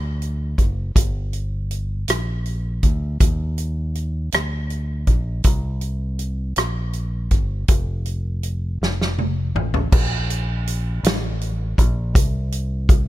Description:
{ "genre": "slow gospel", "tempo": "54 BPM (dotted quarters)", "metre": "6/8", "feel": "straight", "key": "unclear", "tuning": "A4 = 442 Hz", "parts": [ { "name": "fingered electric bass", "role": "bass", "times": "0.0-13.1 s", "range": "F1 to Eb2", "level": "-23 LUFS", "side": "equal", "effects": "none" }, { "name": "natural country drum kit", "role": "drums", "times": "0.2-13.1 s", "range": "crash cymbal, hi-hat, kick drum, rim click, snare drum, toms", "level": "-18 LUFS", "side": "equal", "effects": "none" } ], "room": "little or no reverb", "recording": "none", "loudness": "-19 LUFS", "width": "side -15 dB against mid", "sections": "0.0-9.9 A section; 9.9-13.1 B section", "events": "drum fill 8.8-9.9", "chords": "none" }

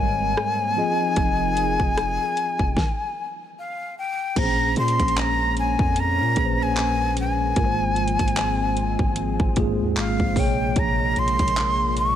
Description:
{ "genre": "contemporary R&B", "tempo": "75 BPM", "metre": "4/4", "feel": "swing 58% on 16ths", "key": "unclear", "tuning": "A4 = 440 Hz", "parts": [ { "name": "breathy reedy jazz flute", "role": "melody", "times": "0.0-12.2 s", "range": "F5 to Db6", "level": "-23 LUFS", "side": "left 2 dB", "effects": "none" }, { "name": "mellow tine electric piano", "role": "accompaniment", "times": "0.0-12.2 s", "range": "Ab2 to Eb5", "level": "-26 LUFS", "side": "right 1 dB", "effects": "medium stereo tremolo" }, { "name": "warm analog pad", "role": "sustained chords", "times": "0.0-12.2 s", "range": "Bb2 to Bb4", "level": "-31 LUFS", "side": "left 1 dB", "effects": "chorus" }, { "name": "long sustained 808-style bass", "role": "bass", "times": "0.0-12.2 s", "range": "F1 to Bb2", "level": "-27 LUFS", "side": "equal", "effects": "none" }, { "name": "pop drum kit", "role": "drums", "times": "0.4-12.2 s", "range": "crash cymbal, handclaps, hi-hat, kick drum, rim click, snare drum", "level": "-25 LUFS", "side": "equal", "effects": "none" } ], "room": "light reverb", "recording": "none", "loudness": "-20 LUFS", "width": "side -10 dB against mid", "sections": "0.0-4.4 A section; 4.4-12.2 B section", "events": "stop 2.8-4.4", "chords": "0.0 Abmaj9; 0.8 Fm7; 3.6 N.C.; 4.4 Bbm7; 7.6 Ab6; 10.4 Bbm7" }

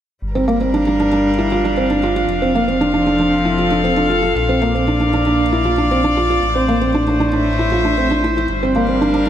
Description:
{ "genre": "electronica", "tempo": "116 BPM", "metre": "4/4", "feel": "straight", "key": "unclear", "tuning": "A4 = 440 Hz", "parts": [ { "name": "dark string quartet", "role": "sustained chords", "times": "0.2-9.3 s", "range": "A2 to F5", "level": "-18 LUFS", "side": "left 1 dB", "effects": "none" }, { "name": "dark detuned saw bass", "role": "bass", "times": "0.2-9.3 s", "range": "F1 to Bb1", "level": "-23 LUFS", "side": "equal", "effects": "none" }, { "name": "felt-muted upright piano", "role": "riff", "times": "0.4-9.3 s", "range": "Bb3 to F4", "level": "-16 LUFS", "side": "right 1 dB", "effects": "digital delay" } ], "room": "moderate lush hall reverb, RT60 3.1 s", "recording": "none", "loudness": "-14 LUFS", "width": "side -10 dB against mid", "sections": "0.2-9.3 A section", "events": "none", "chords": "0.2 Gm7; 2.3 F; 4.4 Bb; 6.4 Am; 8.5 Gm7" }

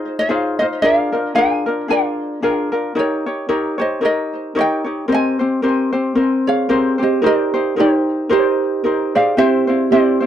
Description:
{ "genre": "Hawaiian", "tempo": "112 BPM", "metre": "4/4", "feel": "swing 56% on 8ths", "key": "Ab major, Eb major from 7.2 s", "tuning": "A4 = 442 Hz", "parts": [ { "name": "ukulele", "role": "melody", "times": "0.0-10.3 s", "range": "G4 to Ab5", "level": "-20 LUFS", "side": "equal", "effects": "tape echo" }, { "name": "ukulele", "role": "accompaniment", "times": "0.0-10.3 s", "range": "C4 to Db5", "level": "-18 LUFS", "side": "left 2 dB", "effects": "none" }, { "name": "small celesta", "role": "second line", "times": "6.5-10.3 s", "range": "Eb4 to Ab4", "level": "-18 LUFS", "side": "right 8 dB", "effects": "tape echo" } ], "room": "light reverb", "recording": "dry, close 1970s-style studio recording", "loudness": "-15 LUFS", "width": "side -10 dB against mid", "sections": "0.0-7.2 A section; 7.2-10.3 B section", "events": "none", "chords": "0.0 Ab6; 0.8 Bb7; 3.0 Eb7; 5.1 Abmaj9; 7.2 Eb6; 9.4 C" }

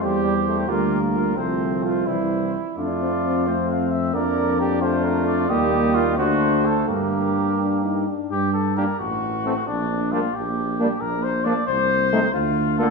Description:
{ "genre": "classical, brass quintet", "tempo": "88 BPM (dotted quarters)", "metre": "6/8", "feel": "rubato", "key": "F major, G minor from 5.5 s", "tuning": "A4 = 440 Hz", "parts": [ { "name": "warm cornet", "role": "melody", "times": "0.0-12.9 s", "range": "D4 to F5", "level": "-26 LUFS", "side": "left 5 dB", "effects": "none" }, { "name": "warm flugelhorn", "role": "second line", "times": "0.0-12.9 s", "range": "C4 to Bb4", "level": "-26 LUFS", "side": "right 5 dB", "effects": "none" }, { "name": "brilliant trombone", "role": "accompaniment", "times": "0.0-12.9 s", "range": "D3 to C4", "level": "-30 LUFS", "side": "right 1 dB", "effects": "none" }, { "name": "mellow French horn", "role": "accompaniment", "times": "0.0-12.9 s", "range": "E3 to Eb4", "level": "-26 LUFS", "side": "left 5 dB", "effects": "none" }, { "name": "warm tuba", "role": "bass", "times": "0.0-12.9 s", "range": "A1 to G2", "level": "-24 LUFS", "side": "right 3 dB", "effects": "none" } ], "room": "moderate concert hall reverb, RT60 1.9 s", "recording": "studio ambience", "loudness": "-19 LUFS", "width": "side -3 dB against mid", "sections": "0.0-8.3 A section; 8.3-12.9 B section", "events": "none", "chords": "0.0 C/E; 0.7 Bb/D; 1.4 F/C; 2.1 C; 2.8 F; 4.1 Bbmaj7/F; 5.5 Eb; 6.2 D7; 6.9 Gm; 9.0 F#m/A; 9.7 Gm/Bb; 11.0 Bb; 11.7 N.C.; 12.3 Bb/D" }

